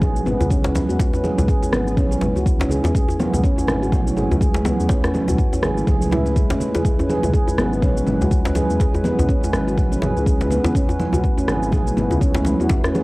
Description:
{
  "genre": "afro house",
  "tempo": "123 BPM",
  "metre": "4/4",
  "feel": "swing 58% on 16ths",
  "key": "C# minor",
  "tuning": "A4 = 440 Hz",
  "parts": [
    { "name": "dark analog pad", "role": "sustained chords", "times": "0.0-13.0 s", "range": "G#3 to B4", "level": "-25 LUFS", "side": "left 1 dB", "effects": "chorus, sidechain pumping, cassette tape" },
    { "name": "handpan", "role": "arpeggios", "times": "0.0-13.0 s", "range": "G#3 to G#4", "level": "-24 LUFS", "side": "right 1 dB", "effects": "sidechain pumping, cassette tape, tape echo" },
    { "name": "dark detuned saw bass", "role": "bass", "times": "0.0-12.8 s", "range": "G#1 to E2", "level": "-24 LUFS", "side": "equal", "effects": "tube saturation, sidechain pumping" },
    { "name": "deep house drum kit", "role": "drums", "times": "0.0-13.0 s", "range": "rim click, shaker, toms", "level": "-28 LUFS", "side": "equal", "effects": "cassette tape" },
    { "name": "electronic kick drum", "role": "drums", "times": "0.0-12.8 s", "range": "none", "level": "-19 LUFS", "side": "equal", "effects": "cassette tape" },
    { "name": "congas", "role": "percussion", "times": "0.0-13.0 s", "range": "none", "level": "-27 LUFS", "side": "right 2 dB", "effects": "none" },
    { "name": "djembe", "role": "percussion", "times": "0.4-12.9 s", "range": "none", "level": "-25 LUFS", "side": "left 1 dB", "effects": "none" }
  ],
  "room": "studio reverb",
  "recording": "home recording on cassette",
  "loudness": "-16 LUFS",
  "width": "side -21 dB against mid",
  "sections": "0.0-13.0 A section",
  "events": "none",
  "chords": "0.0 C#m7; 2.9 Aadd9; 6.8 C#m7; 10.8 Aadd9",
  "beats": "0.02 0.51 | 0.99 1.48 1.97 2.46 | 2.95 3.43 3.92 4.41 | 4.90 5.38 5.87 6.36 | 6.85 7.34 7.82 8.31 | 8.80 9.29 9.78 10.26 | 10.75 11.24 11.73 12.21 | 12.70"
}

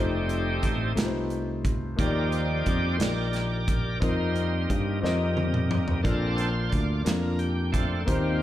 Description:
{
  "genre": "slow gospel",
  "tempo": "59 BPM (dotted quarters)",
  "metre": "6/8",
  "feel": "straight",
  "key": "Bb major",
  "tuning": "A4 = 440 Hz",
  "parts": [
    { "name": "warm concert grand piano", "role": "accompaniment", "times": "0.0-8.4 s", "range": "Bb2 to F5", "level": "-31 LUFS", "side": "left 3 dB", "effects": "slapback echo" },
    { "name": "bright tonewheel organ", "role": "sustained chords", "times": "0.0-8.4 s", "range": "F3 to D5", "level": "-31 LUFS", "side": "right 2 dB", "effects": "slow rotary speaker" },
    { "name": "fingered electric bass", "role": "bass", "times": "0.0-8.4 s", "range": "F1 to G2", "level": "-28 LUFS", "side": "equal", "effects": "none" },
    { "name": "modern studio drum kit", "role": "drums", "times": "0.3-8.2 s", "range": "hi-hat, kick drum, snare drum, toms", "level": "-29 LUFS", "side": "equal", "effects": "none" }
  ],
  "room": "light reverb, studio reverb",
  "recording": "live gig heard through the venue's PA, club reverb",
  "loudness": "-24 LUFS",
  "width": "side -13 dB against mid",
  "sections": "0.0-8.4 A section",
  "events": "tonewheel organ solo 0.0-8.4; drum fill 5.0-6.0",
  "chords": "0.0 F9; 2.0 Ebmaj9; 4.0 F9sus4; 6.0 Bbmaj7",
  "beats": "0.97 | 1.98 3.00 | 4.02 5.03 | 6.05 7.06 | 8.07"
}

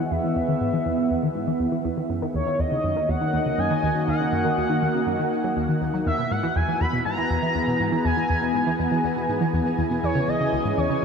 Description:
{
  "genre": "ambient, sequencer-driven space music",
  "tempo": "121 BPM",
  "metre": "4/4",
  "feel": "straight",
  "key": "E lydian",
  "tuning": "A4 = 441 Hz",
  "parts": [
    { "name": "expressive portamento lead", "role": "melody", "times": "0.0-11.0 s", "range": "C#5 to B5", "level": "-26 LUFS", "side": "left 1 dB", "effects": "analog chorus, ping-pong delay" },
    { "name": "lush unison pad", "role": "sustained chords", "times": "0.0-11.0 s", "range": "D#3 to G#5", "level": "-25 LUFS", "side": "equal", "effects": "chorus" },
    { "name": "concert harp", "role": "arpeggios", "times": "0.0-0.6 s", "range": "none", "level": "barely audible", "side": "none", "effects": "none" },
    { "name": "tight sequenced synth", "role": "riff", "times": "0.0-11.0 s", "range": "C#2 to F#3", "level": "-26 LUFS", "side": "equal", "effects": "chorus, phaser, ping-pong delay" },
    { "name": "pulsing gated texture", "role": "texture", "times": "0.0-11.0 s", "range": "F#4 to F#5", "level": "-44 LUFS", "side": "right 4 dB", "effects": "none" }
  ],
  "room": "wet huge ambient reverb, RT60 8.5 s",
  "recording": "dark, warm production",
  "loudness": "-21 LUFS",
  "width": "side -6 dB against mid",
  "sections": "0.0-11.0 A section",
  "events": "none",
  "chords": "0.0 E; 2.1 D#m; 6.1 E; 10.0 C#m",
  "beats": "| 0.12 0.61 1.11 1.60 | 2.10 2.59 3.09 3.59 | 4.08 4.58 5.07 5.57 | 6.07 6.56 7.06 7.55 | 8.05 8.54 9.04 9.54 | 10.03 10.53 11.02"
}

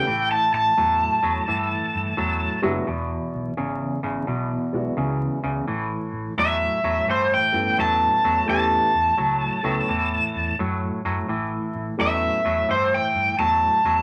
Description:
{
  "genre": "electric blues shuffle",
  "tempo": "86 BPM",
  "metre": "4/4",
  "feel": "swing 66% on 8ths",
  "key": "A mixolydian",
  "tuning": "A4 = 440 Hz",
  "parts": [
    { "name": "overdriven slide guitar", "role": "melody", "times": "0.0-14.0 s", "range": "C5 to A5", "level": "-22 LUFS", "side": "equal", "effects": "none" },
    { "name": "dark upright piano", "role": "accompaniment", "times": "0.0-12.4 s", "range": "G#3 to G5", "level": "-30 LUFS", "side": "equal", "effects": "none" },
    { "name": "semi-hollow electric guitar", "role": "riff", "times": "0.0-14.0 s", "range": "E2 to F#3", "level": "-29 LUFS", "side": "equal", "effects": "harmonic tremolo" },
    { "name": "vintage muted fingered electric bass", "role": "bass", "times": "0.1-14.0 s", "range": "E1 to G2", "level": "-33 LUFS", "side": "equal", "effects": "none" }
  ],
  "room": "moderate studio reverb, RT60 0.9 s",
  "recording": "vinyl crackle",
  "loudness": "-23 LUFS",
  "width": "mono",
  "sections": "0.0-5.7 A section; 5.7-14.0 A section",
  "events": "electric slide guitar solo 0.0-14.0",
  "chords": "0.1 A5; 2.9 E9; 5.7 A9",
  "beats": "| 0.07 0.77 1.47 2.17 | 2.88 3.58 4.28 4.98 | 5.68 6.38 7.08 7.78 | 8.48 9.18 9.88 10.59 | 11.29 11.99 12.69 13.39"
}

